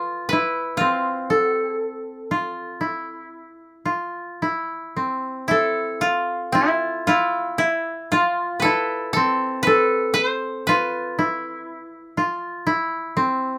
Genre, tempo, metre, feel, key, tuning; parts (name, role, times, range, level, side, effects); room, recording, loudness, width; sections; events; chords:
japanese traditional, Japanese chamber music; 54-61 BPM; 4/4; rubato; A hirajoshi; A4 = 440 Hz
koto; melody; 0.0-12.4 s; E4 to C5; -25 LUFS; equal
koto; second line; 0.0-13.6 s; C4 to A4; -24 LUFS; equal
moderate booth ambience, RT60 0.2 s; -22 LUFS; mono
0.0-5.5 A section; 5.5-13.6 B section